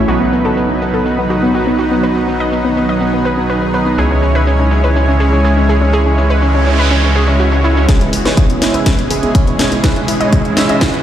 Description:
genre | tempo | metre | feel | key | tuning
progressive house | 123 BPM | 4/4 | straight | E major | A4 = 440 Hz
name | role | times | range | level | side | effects
shimmering ambient pad | sustained chords | 0.0-11.0 s | B2 to G#4 | -20 LUFS | equal | chorus, built-in reverb, sidechain pumping
analog pluck | arpeggios | 0.0-11.0 s | B3 to D#5 | -18 LUFS | left 1 dB | chorus, sidechain pumping, digital delay
soft supersaw | stabs | 0.0-11.0 s | F#3 to E5 | -16 LUFS | right 2 dB | sidechain pumping, low-pass filter, digital delay
round analog bass | bass | 0.0-7.9 s | B1 to C#2 | -15 LUFS | equal | sidechain pumping
cloth-damped thuddy drum kit | drums | 0.1-7.9 s | hi-hat, snare drum | -31 LUFS | equal | none
house drum kit | drums | 0.1-11.0 s | hi-hat, shaker, snare drum | -18 LUFS | left 1 dB | sidechain pumping on perc, low-pass filter on perc, low-pass filter on snare, sidechain pumping on hats, low-pass filter on hats, low-pass filter on room
noise sweep and riser | sound effects | 6.3-11.0 s | none | -24 LUFS | right 1 dB | none
electronic kick drum | drums | 7.9-10.9 s | none | -13 LUFS | equal | none
room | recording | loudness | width
light reverb | played on a big sound system in a bare room, large studio reverb | -11 LUFS | side -10 dB against mid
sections
0.0-7.9 A section; 7.9-11.0 B section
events
filter sweep on synth pluck 0.0-7.9; filter sweep on supersaw synth 0.0-7.9; noise sweep 6.3-7.9; build-up 7.9-11.0; drum fill 7.9-11.0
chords
0.1 B; 4.0 C#m; 7.9 E6

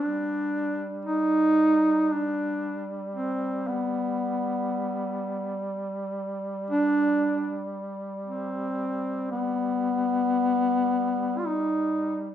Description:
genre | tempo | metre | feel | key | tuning
caucasian folk, Caucasian lament | 55-60 BPM | 3/4 | rubato | unclear | A4 = 441 Hz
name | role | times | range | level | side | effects
mellow duduk | melody | 0.0-12.3 s | B3 to F4 | -24 LUFS | equal | none
mellow duduk | drone | 0.0-12.3 s | G3 | -33 LUFS | right 1 dB | none
room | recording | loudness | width
moderate large studio reverb, RT60 0.9 s | band playing live in one room | -24 LUFS | side -10 dB against mid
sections
0.0-12.3 A section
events
none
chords
none

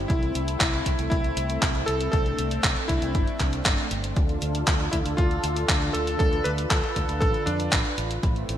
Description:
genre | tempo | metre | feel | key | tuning
italo disco | 118 BPM | 4/4 | straight | unclear | A4 = 440 Hz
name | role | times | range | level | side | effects
warm analog pad | sustained chords | 0.0-8.6 s | D3 to B4 | -31 LUFS | equal | chorus
fingered electric bass with an envelope filter | bass | 0.0-8.6 s | G1 to F2 | -29 LUFS | equal | none
bright electric grand piano | melody | 0.1-7.9 s | D4 to B4 | -29 LUFS | equal | digital delay
electronic kick drum | drums | 0.1-8.3 s | none | -25 LUFS | equal | none
gated 80s digital drum machine | drums | 0.1-8.6 s | handclaps, hi-hat | -28 LUFS | equal | gated reverb
room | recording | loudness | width
moderate lush hall reverb, RT60 1.8 s | bright 1980s-style digital production, lossy compression artefacts | -22 LUFS | side -10 dB against mid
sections
0.0-8.6 A section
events
none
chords
0.1 Am/C; 4.2 Dm

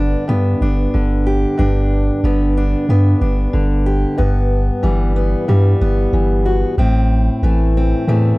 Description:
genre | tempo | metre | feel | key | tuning
folk | 92 BPM | 4/4 | straight | G major | A4 = 440 Hz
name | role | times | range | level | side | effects
fingerpicked steel-string acoustic guitar | accompaniment | 0.0-8.4 s | E2 to G4 | -17 LUFS | equal | none
punchy sub bass | bass | 0.0-8.3 s | G1 to A2 | -15 LUFS | equal | none
room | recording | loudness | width
little or no reverb | dry, close 1970s-style studio recording | -13 LUFS | side -21 dB against mid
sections
0.0-8.4 A section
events
none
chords
0.0 G; 4.2 Em/G; 6.8 Am

